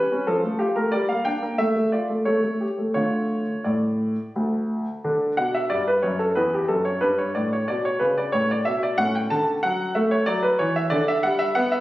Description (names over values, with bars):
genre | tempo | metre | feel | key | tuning
classical-period piano sonatina | 91 BPM | 3/4 | rubato | D minor, D major from 5.0 s | A4 = 440 Hz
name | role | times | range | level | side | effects
clear baby grand piano | solo | 0.0-11.8 s | D2 to A5 | -20 LUFS | equal | none
room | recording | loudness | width
wet recital hall reverb, RT60 1.3 s | recorded on a phone in the room, studio reverb, compression | -20 LUFS | side -16 dB against mid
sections
0.0-5.0 A section; 5.0-11.8 A section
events
none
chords
0.3 F; 0.9 Gm; 1.6 Dm/A; 2.3 A7; 3.0 Dm; 5.0 D; 7.0 G; 9.0 A; 10.9 D69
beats
0.27 | 0.93 1.60 2.27 | 2.96 3.65 4.35 | 5.04 5.71 6.37 | 7.03 7.68 8.34 | 8.98 9.63 10.28 | 10.92 11.56